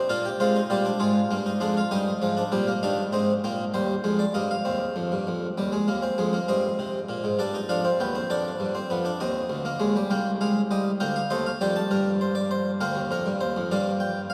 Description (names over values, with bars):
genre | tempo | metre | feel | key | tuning
classical, baroque-style 4-part fugue for harpsichord | 66 BPM (dotted quarters) | 12/8 | straight | C minor from 3.7 s | A4 = 440 Hz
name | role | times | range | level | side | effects
harpsichord | solo | 0.0-14.3 s | C2 to A5 | -26 LUFS | equal | none
room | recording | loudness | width
wet cathedral reverb, RT60 4.9 s | none | -26 LUFS | mono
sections
0.0-3.7 A section; 3.7-14.3 B section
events
none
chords
0.1 Bb7; 1.9 Eb/G; 3.7 Cm/Eb; 7.4 G7; 9.2 Cm; 11.0 Gm/D